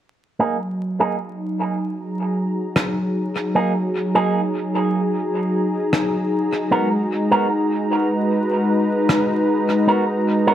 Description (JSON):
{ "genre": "ambient dub", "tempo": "76 BPM", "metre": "4/4", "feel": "straight", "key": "unclear", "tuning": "A4 = 439 Hz", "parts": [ { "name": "warm analog pad", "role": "sustained chords", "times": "0.4-10.5 s", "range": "F#3 to A#5", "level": "-19 LUFS", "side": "equal", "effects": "chorus" }, { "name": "electric guitar with an envelope filter", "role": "stabs", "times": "0.4-10.5 s", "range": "A#3 to A#4", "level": "-21 LUFS", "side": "right 2 dB", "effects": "low-pass filter, dub echo" }, { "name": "rim click", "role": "drums", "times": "2.8-9.3 s", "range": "none", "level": "-23 LUFS", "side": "equal", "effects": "dub echo" } ], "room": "light reverb, studio ambience", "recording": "echo-heavy mix, vinyl crackle", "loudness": "-18 LUFS", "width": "side -11 dB against mid", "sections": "0.4-10.5 A section", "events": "filter sweep on clean electric guitar 0.4-10.5", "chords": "0.4 F#69; 6.7 G#m7" }